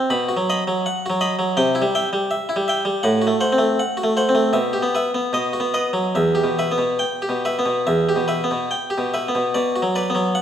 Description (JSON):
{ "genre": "classical, baroque-style suite movement for harpsichord", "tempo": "69-82 BPM", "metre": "4/4", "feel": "rubato", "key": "E minor", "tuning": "A4 = 440 Hz", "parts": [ { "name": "harpsichord", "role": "solo", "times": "0.0-10.4 s", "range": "E2 to B5", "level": "-18 LUFS", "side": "equal", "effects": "none" } ], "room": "moderate scoring stage reverb, RT60 1.8 s", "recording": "none", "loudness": "-18 LUFS", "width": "side -9 dB against mid", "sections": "0.0-9.6 A section", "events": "none", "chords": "0.1 B; 1.6 C; 3.1 F#dim/A; 4.6 Em/B; 5.3 B; 6.2 Em; 9.6 Bm", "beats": "| 0.11 0.84 1.58 2.32 | 3.06 3.80 4.56 5.35 | 6.17 7.03 7.88 8.71 | 9.56 10.35" }